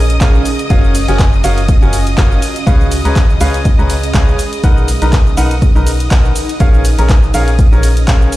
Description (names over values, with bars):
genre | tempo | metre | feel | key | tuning
piano house | 122 BPM | 4/4 | swing 56% on 16ths | Db mixolydian | A4 = 439 Hz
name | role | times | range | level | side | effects
clear symphonic violin section | sustained chords | 0.0-8.4 s | Eb5 to Eb6 | -25 LUFS | equal | sidechain pumping
organ-like FM bass | bass | 0.0-8.3 s | Gb1 to Db2 | -13 LUFS | equal | sidechain pumping
granular cloud pad | texture | 0.0-8.4 s | Db4 to Cb6 | -23 LUFS | right 2 dB | built-in reverb, sidechain pumping
punchy analog drum machine | drums | 0.1-8.4 s | handclaps, hi-hat, ride cymbal, shaker | -22 LUFS | equal | none
clear concert grand piano | riff | 0.2-8.3 s | Db4 to Bb5 | -19 LUFS | left 1 dB | sidechain pumping, digital delay
electronic kick drum | drums | 0.2-8.2 s | none | -11 LUFS | equal | none
room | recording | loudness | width
little or no reverb | played on a big sound system in a bare room, stone room reverb | -9 LUFS | side -16 dB against mid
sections
0.0-8.4 A section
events
none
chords
0.0 Bbm7; 0.7 Gbmaj7; 2.4 Db7; 4.6 Cbmaj7; 6.6 Bbm7